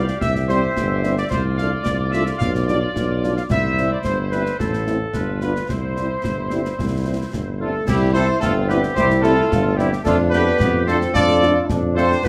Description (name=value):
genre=military-style march for wind band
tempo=110 BPM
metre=2/4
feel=straight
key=C major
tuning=A4 = 439 Hz
part: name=mellow trumpet section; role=melody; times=0.0-12.3 s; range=G4 to F5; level=-26 LUFS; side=equal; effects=none
part: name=clear woodwind section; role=second line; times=0.0-12.3 s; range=E4 to F5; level=-30 LUFS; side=equal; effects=none
part: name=mellow French horn section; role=accompaniment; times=0.0-12.1 s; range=G3 to F4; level=-28 LUFS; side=equal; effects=none
part: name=warm tuba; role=bass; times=0.0-12.3 s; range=G1 to G2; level=-24 LUFS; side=equal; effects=none
part: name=concert snare drum, concert bass drum and clash cymbals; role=drums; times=0.1-12.3 s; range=none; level=-29 LUFS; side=equal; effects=none
part: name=warm euphonium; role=second line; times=7.6-12.3 s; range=G3 to D4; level=-26 LUFS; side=equal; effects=none
part: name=warm trombone section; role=sustained chords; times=7.9-12.3 s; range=A3 to F4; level=-27 LUFS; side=equal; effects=none
room=moderate large studio reverb, RT60 1.2 s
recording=none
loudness=-19 LUFS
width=mono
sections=0.0-7.9 A section; 7.9-12.3 A section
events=none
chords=0.2 C; 1.3 Dm7/C; 2.4 G7/B; 3.5 C; 4.6 Am; 5.1 G7; 5.7 C; 10.1 Dm/F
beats=| 0.22 0.77 | 1.31 1.86 | 2.41 2.95 | 3.50 4.05 | 4.59 5.14 | 5.68 6.23 | 6.78 7.32 | 7.87 8.42 | 8.96 9.51 | 10.05 10.60 | 11.15 11.69 | 12.24